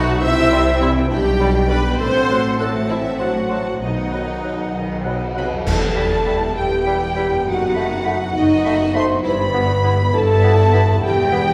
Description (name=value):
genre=cinematic, playful, whimsical film cue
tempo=67 BPM (dotted quarters)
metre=6/8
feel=straight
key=E minor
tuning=A4 = 440 Hz
part: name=rich studio violin section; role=melody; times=0.0-11.5 s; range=D#5 to C6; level=-31 LUFS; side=equal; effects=none
part: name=clear clarinet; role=second line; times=0.0-11.4 s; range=B3 to C5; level=-31 LUFS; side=equal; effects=none
part: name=clear oboe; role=second line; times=0.0-11.4 s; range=D5 to B5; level=-35 LUFS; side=equal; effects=none
part: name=rich studio violin section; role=second line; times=0.0-11.5 s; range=B3 to E6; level=-32 LUFS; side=equal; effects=none
part: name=clear bassoon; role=accompaniment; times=0.0-11.4 s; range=F#3 to B3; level=-31 LUFS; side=equal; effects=none
part: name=rich studio viola section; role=accompaniment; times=0.0-11.5 s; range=G3 to E5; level=-27 LUFS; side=equal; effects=none
part: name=dark French horn section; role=sustained chords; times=0.0-11.5 s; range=D#3 to C5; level=-23 LUFS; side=equal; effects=none
part: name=concert harp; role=arpeggios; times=0.0-11.5 s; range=E2 to F#5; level=-32 LUFS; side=equal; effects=none
part: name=warm studio cello section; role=bass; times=0.0-11.5 s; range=E2 to D#3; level=-29 LUFS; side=equal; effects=none
part: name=warm studio double bass section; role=bass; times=0.0-11.5 s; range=E1 to C2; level=-24 LUFS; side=equal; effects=none
part: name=mellow flute section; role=second line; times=0.5-11.5 s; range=D#5 to C6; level=-29 LUFS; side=equal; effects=none
part: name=cymbal swell, clash cymbals and concert bass drum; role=percussion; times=2.0-6.8 s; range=none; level=-29 LUFS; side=equal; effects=none
room=wet recital hall reverb, RT60 1.6 s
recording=recorded in a church or concert hall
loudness=-18 LUFS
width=mono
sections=0.0-5.7 A section; 5.7-11.5 B section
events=band accent 5.7-6.3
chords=0.2 C; 1.1 G/B; 2.0 F#dim/A; 3.8 B; 5.7 Em; 7.5 B7/F#; 9.2 Em/G; 11.0 Em